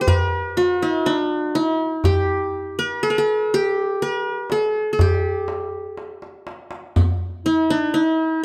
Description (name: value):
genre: Arabic maqam ensemble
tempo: 122 BPM (eighths)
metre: 10/8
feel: straight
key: G maqam huzam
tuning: A4 = 441 Hz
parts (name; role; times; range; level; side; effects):
- qanun; melody; 0.0-8.4 s; D4+40c to C5-40c; -22 LUFS; equal; none
- darbuka; percussion; 0.1-7.2 s; none; -24 LUFS; equal; none
- riq; percussion; 7.0-8.1 s; none; -34 LUFS; equal; none
- warm clarinet; second line; 7.5-8.4 s; Eb4+49c to Eb4+50c; -24 LUFS; equal; none
room: light reverb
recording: close, detailed microphones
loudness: -21 LUFS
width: mono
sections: 0.0-7.0 A section; 7.0-8.4 B section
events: drum fill 6.0-7.0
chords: none